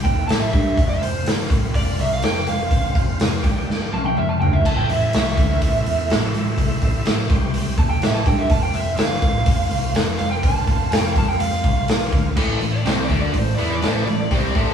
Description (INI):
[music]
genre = blues rock power trio and southern rock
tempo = 124 BPM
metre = 4/4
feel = straight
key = A minor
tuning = A4 = 440 Hz
[part]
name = overdriven slide guitar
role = melody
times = 0.0-14.7 s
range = A4 to A5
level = -24 LUFS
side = right 2 dB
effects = none
[part]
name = overdriven tonewheel organ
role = sustained chords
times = 0.0-14.7 s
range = C4 to G5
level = -33 LUFS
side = right 2 dB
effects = chorus vibrato, fast rotary speaker
[part]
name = growling picked electric bass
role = bass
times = 0.0-14.7 s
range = F1 to G2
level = -24 LUFS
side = equal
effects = overdrive
[part]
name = raw garage drum kit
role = drums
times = 0.0-14.7 s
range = crash cymbal, hi-hat, kick drum, snare drum, toms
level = -19 LUFS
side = equal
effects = none
[part]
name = overdriven semi-hollow guitar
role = riff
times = 12.4-14.7 s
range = A2 to E4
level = -22 LUFS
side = equal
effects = spring reverb
[sound]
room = moderate stone room reverb, RT60 1.1 s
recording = band playing live in one room, small room ambience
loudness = -17 LUFS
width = side -8 dB against mid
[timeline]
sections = 0.0-12.4 A section; 12.4-14.7 B section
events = electric slide guitar solo 0.0-12.4; drum fill 3.7-4.7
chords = 0.1 Am; 0.8 F5; 3.4 G5; 3.9 F5; 4.7 Am; 7.3 C5; 7.8 Am; 8.5 F5; 12.4 Am